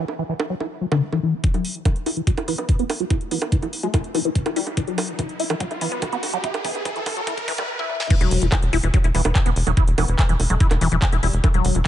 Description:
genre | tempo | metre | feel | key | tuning
psychedelic trance | 144 BPM | 4/4 | straight | E minor | A4 = 440 Hz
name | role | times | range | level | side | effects
liquid acid bass | riff | 0.0-11.8 s | D3 to E4 | -25 LUFS | moving between left 8 dB and right 8 dB | phaser, auto-pan, sidechain pumping, dub echo
drum and bass drum kit | drums | 0.1-11.9 s | bongos, crash cymbal, handclaps, hi-hat, snare drum, toms | -27 LUFS | right 3 dB | high-pass filter on perc, high-pass filter on hats, high-pass filter on toms, high-pass filter on snare, high-pass filter on cymbals, high-pass filter on room
electronic kick drum | drums | 1.4-11.5 s | none | -19 LUFS | equal | none
riser | sound effects | 3.3-7.7 s | none | -32 LUFS | right 1 dB | none
resonant blip pluck | second line | 2.5-11.6 s | G3 to E4 | -34 LUFS | left 3 dB | phaser, sidechain pumping, high-pass filter, digital delay
tight sequencer bass | bass | 8.2-11.8 s | E1 | -20 LUFS | equal | none
room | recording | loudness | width
digital ambience | high-pass filter, nothing above 10.6 kHz | -19 LUFS | side -12 dB against mid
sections
0.0-1.4 A section; 1.4-8.1 B section; 8.1-11.9 C section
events
filter sweep on drum 0.0-1.4; filter sweep on acid bass 0.0-1.4, 1.4-8.1; build-up 1.4-8.1; filter sweep 1.4-8.1; riser 3.3-7.7; drum fill 4.8-7.7, 7.8-8.1; drop 8.1-11.9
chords
0.0 E5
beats
0.19 0.60 1.02 | 1.44 1.85 2.27 2.69 | 3.10 3.52 3.94 4.35 | 4.77 5.19 5.60 6.02 | 6.44 6.85 7.27 7.69 | 8.10 8.52 8.94 9.35 | 9.77 10.19 10.60 11.02 | 11.44 11.85

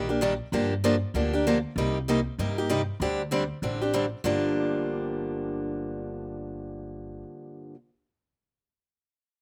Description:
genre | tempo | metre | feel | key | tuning
acoustic string swing (jazz manouche) | 193 BPM | 4/4 | swing 60% on 8ths | G minor | A4 = 441 Hz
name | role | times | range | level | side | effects
picked steel-string acoustic guitar | accompaniment | 0.0-7.8 s | G2 to G4 | -29 LUFS | equal | none
upright bass | bass | 0.0-7.2 s | G1 to G2 | -36 LUFS | equal | none
room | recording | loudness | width
little or no reverb | recorded outdoors, with no room sound | -28 LUFS | mono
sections
0.0-4.2 A section; 4.2-6.7 B section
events
none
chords
0.0 Ebmaj7; 0.5 Gm7; 1.8 Cm7; 3.0 D7sus4; 4.2 Gm7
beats
0.21 | 0.53 0.83 1.15 1.46 | 1.77 2.08 2.39 2.70 | 3.01 3.32 3.63 3.94 | 4.25 4.56 4.87 5.18 | 5.49 5.80 6.11 6.42

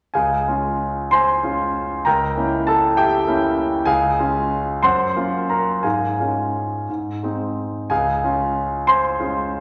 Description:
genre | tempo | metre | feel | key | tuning
classical, romantic character piece for solo piano | 57-68 BPM (dotted quarters) | 6/8 | rubato | Db major | A4 = 439 Hz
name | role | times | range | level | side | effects
clear concert grand piano | solo | 0.1-9.6 s | Db2 to C6 | -20 LUFS | equal | none
room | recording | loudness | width
wet recital hall reverb, RT60 1.6 s | none | -20 LUFS | mono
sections
0.1-9.6 A section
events
none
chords
0.1 Db; 2.1 Dbdim7; 3.9 Db; 4.8 Gbmaj7; 5.8 Db/Ab; 6.9 Ab; 7.9 Db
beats
| 0.15 1.12 | 2.06 2.98 | 3.87 4.84 | 5.84 6.88 | 7.90 8.87

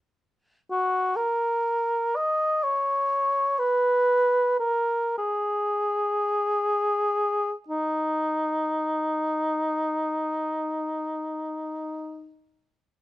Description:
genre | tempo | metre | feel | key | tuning
classical, free, expressive piece for unaccompanied cor anglais | 18-43 BPM (dotted quarters) | 6/8 | rubato | Eb minor | A4 = 440 Hz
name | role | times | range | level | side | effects
dark cor anglais | solo | 0.7-12.3 s | Eb4 to Eb5 | -23 LUFS | equal | none
room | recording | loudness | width
light reverb | none | -23 LUFS | side -16 dB against mid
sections
0.7-7.7 A section; 7.7-11.8 B section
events
slowing down 0.0-7.7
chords
none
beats
| 0.71 2.16 | 3.57 5.19 | 7.68 9.75

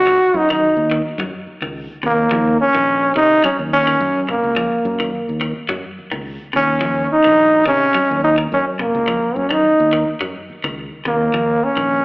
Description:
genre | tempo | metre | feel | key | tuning
afrobeat | 106 BPM | 4/4 | swing 54% on 16ths | Eb dorian | A4 = 441 Hz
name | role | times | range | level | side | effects
warm trombone | melody | 0.0-12.0 s | Bb3 to Gb4 | -14 LUFS | equal | slapback echo
fingered electric bass | bass | 0.0-12.0 s | Bb1 to C3 | -24 LUFS | equal | none
clean electric guitar | arpeggios | 0.1-12.0 s | C3 to Gb3 | -25 LUFS | left 1 dB | slapback echo
room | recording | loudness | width
light reverb | live gig heard through the venue's PA, club reverb, AM radio sound | -14 LUFS | side -25 dB against mid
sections
0.0-12.0 A section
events
none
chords
0.0 Ebm7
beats
| 0.06 0.63 1.19 1.75 | 2.31 2.88 3.44 4.00 | 4.57 5.13 5.69 6.26 | 6.82 7.38 7.95 8.51 | 9.08 9.64 10.21 10.77 | 11.34 11.90

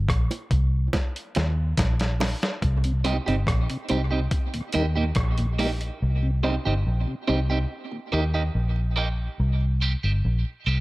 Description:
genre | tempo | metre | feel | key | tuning
dub reggae | 71 BPM | 4/4 | straight | C minor | A4 = 440 Hz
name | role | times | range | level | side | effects
vintage muted fingered electric bass | bass | 0.0-10.8 s | G1 to Eb2 | -23 LUFS | equal | none
dusty soul sampler-style drum kit | drums | 0.1-6.0 s | hi-hat, kick drum, rim click, snare drum | -26 LUFS | equal | none
bongos | percussion | 0.3-2.4 s | none | -34 LUFS | right 4 dB | tape echo
mellow tonewheel organ | accompaniment | 2.8-10.7 s | Eb2 to Eb4 | -32 LUFS | left 1 dB | overdrive, chorus vibrato, stopped rotary speaker, high-pass filter
electric guitar at the edge of break-up | accompaniment | 3.0-10.8 s | Bb3 to G4 | -28 LUFS | right 4 dB | high-pass filter, tape echo
room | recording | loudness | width
little or no reverb | none | -22 LUFS | side -20 dB against mid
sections
0.0-2.6 A section; 2.6-10.8 B section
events
break 0.0-2.6; drum fill 0.9-2.6; part muted 6.0-10.8; filter sweep 6.0-10.8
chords
0.0 C5; 0.9 Eb5; 2.6 Cm; 4.3 Eb; 6.0 Cm; 7.7 Eb; 9.4 Cm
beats
0.09 0.93 1.78 | 2.62 3.47 4.31 5.16 | 6.00 6.85 7.69 8.54 | 9.38 10.23

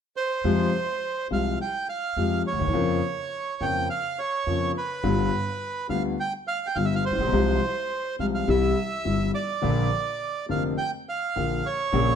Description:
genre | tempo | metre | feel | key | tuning
tango | 104 BPM | 4/4 | rubato | unclear | A4 = 439 Hz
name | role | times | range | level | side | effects
bandoneon | melody | 0.2-12.2 s | B4 to G5 | -28 LUFS | right 4 dB | none
clear concert grand piano | accompaniment | 0.4-12.2 s | F1 to F4 | -25 LUFS | left 4 dB | none
upright bass | bass | 0.4-12.2 s | F1 to F2 | -30 LUFS | right 3 dB | none
room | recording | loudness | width
moderate large studio reverb, RT60 1.1 s | lossy compression artefacts | -23 LUFS | side -8 dB against mid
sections
0.4-12.2 A section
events
none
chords
0.4 Fm; 2.8 Bbm/F; 5.0 G7; 7.3 Fm/C; 8.5 C; 9.6 Bb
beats
| 0.45 1.02 1.60 2.17 | 2.75 3.33 3.90 4.47 | 5.04 5.62 6.19 6.76 | 7.33 7.91 8.48 9.06 | 9.63 10.21 10.79 11.36 | 11.93

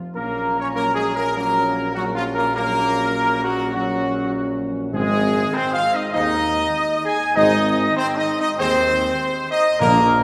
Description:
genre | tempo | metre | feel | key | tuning
classical | 100 BPM | 4/4 | straight | unclear | A4 = 440 Hz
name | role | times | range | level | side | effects
mellow French horn section | sustained chords | 0.1-10.0 s | F3 to D4 | -30 LUFS | equal | none
warm trumpet section | melody | 0.2-10.2 s | F4 to Ab5 | -22 LUFS | equal | none
bright trombone section | sustained chords | 0.2-10.2 s | F3 to Ab4 | -27 LUFS | equal | none
dark tuba | bass | 0.2-10.2 s | Ab1 to Eb2 | -29 LUFS | equal | none
timpani | percussion | 9.8-10.2 s | Bb2 | -24 LUFS | equal | none
room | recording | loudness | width
wet church reverb, RT60 2.6 s | heard from further back in the room | -20 LUFS | mono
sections
0.0-10.2 A section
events
none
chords
0.1 Gb/Bb; 4.9 Ab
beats
| 0.15 0.75 1.35 1.95 | 2.55 3.14 3.74 4.34 | 4.93 5.54 6.14 6.75 | 7.36 7.97 8.58 9.19 | 9.80

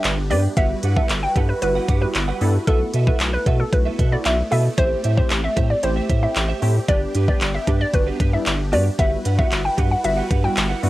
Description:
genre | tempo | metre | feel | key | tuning
dance-pop | 114 BPM | 4/4 | straight | E minor | A4 = 438 Hz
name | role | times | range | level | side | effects
funky polysynth comp | accompaniment | 0.0-10.9 s | G3 to A4 | -28 LUFS | equal | chorus, sidechain pumping, cassette tape
supersaw chords | sustained chords | 0.0-10.9 s | G3 to B4 | -32 LUFS | equal | phaser, sidechain pumping, cassette tape
saturated sub bass | bass | 0.0-10.9 s | G1 to B2 | -21 LUFS | equal | sidechain pumping
pop drum kit | drums | 0.0-10.9 s | handclaps, hi-hat, kick drum | -21 LUFS | equal | cassette tape
direct-recorded clean electric guitar | riff | 0.2-10.9 s | D4 to F#5 | -29 LUFS | right 8 dB | ensemble chorus, cassette tape
hollow square pluck | melody | 0.3-10.6 s | A4 to G5 | -24 LUFS | equal | chorus, cassette tape
room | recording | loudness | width
little or no reverb | home recording on cassette | -17 LUFS | side -16 dB against mid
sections
0.0-10.9 A section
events
none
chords
0.0 G; 0.6 Emadd9/G; 2.7 B7sus4; 4.8 Am7; 6.9 G; 9.0 Emadd9/G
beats
0.04 | 0.57 1.10 1.62 2.15 | 2.67 3.20 3.73 4.25 | 4.78 5.31 5.83 6.36 | 6.88 7.41 7.94 8.46 | 8.99 9.52 10.04 10.57

